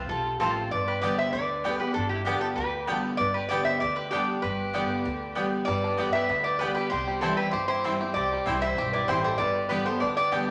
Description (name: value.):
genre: bluegrass.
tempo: 194 BPM.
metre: 4/4.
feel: straight.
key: G mixolydian.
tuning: A4 = 439 Hz.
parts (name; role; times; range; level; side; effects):
lap resonator guitar; melody; 0.0-10.5 s; G4 to E5; -30 LUFS; equal; none.
dark fiddle; second line; 0.0-10.5 s; D4 to C5; -37 LUFS; equal; none.
picked steel-string acoustic guitar; accompaniment; 0.0-10.5 s; G2 to G4; -34 LUFS; equal; none.
upright bass; bass; 0.0-10.4 s; G1 to D2; -40 LUFS; equal; none.
mandolin; stabs; 0.4-10.4 s; B3 to A5; -34 LUFS; equal; none.
bluegrass banjo; arpeggios; 5.7-10.5 s; G3 to G4; -35 LUFS; equal; none.
room: wet large studio reverb, RT60 1.2 s.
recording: none.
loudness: -27 LUFS.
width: mono.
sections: 0.0-10.5 A section.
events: none.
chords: 0.0 F; 0.7 G; 6.9 C; 9.4 G.